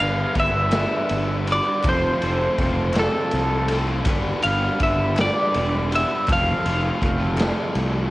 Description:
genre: indie rock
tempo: 54 BPM (dotted quarters)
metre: 6/8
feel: straight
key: G mixolydian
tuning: A4 = 440 Hz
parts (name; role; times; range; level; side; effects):
- twelve-string electric guitar; melody; 0.0-8.1 s; A4 to F5; -23 LUFS; equal; cassette tape, tape echo
- cranked stack guitar; riff; 0.0-8.1 s; F3 to B4; -29 LUFS; left 5 dB; overdrive, cassette tape
- crunchy overdriven guitar; riff; 0.0-8.1 s; F3 to B4; -29 LUFS; right 5 dB; wide subtle chorus, cassette tape, tape echo
- fuzz fingered electric bass; bass; 0.0-8.1 s; E1 to C2; -24 LUFS; equal; overdrive
- raw garage drum kit; drums; 0.3-7.9 s; kick drum, ride cymbal, snare drum; -25 LUFS; equal; none
- group handclap; percussion; 0.7-7.5 s; none; -39 LUFS; left 5 dB; none
room: light reverb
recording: home recording on cassette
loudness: -19 LUFS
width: side -18 dB against mid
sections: 0.0-8.1 A section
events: none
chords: 0.0 G; 1.9 F; 4.1 G; 6.3 F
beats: 0.74 | 1.85 2.96 | 4.07 5.18 | 6.28 7.39

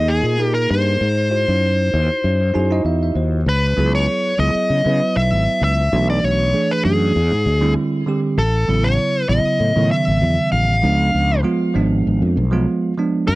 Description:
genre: electric jazz fusion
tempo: 98 BPM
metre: 4/4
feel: straight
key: C# minor from 3.5 s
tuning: A4 = 445 Hz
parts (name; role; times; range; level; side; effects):
- dark smooth lead guitar; melody; 0.0-13.4 s; Ab4 to E#5; -20 LUFS; left 1 dB; overdrive, tape echo
- bell-like tine electric piano; accompaniment; 0.0-13.3 s; C#3 to Ab5; -20 LUFS; right 3 dB; none
- fretless electric bass; bass; 0.0-13.4 s; G#1 to C#3; -18 LUFS; left 1 dB; none
room: light reverb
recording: dry, close 1970s-style studio recording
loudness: -15 LUFS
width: side -19 dB against mid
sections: 0.0-3.5 A section; 3.5-13.4 B section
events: tine electric piano fill 2.2-3.5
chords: 0.0 Fm11 (rootless); 1.0 Ab7b13; 3.5 C#m11; 5.9 Bm7; 7.2 E7alt; 8.4 Aadd9; 10.8 C#7b9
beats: 0.39 | 1.01 1.62 2.24 2.86 | 3.47 4.09 4.70 5.32 | 5.93 6.54 7.16 7.77 | 8.39 9.00 9.61 10.22 | 10.84 11.45 12.06 12.68 | 13.29

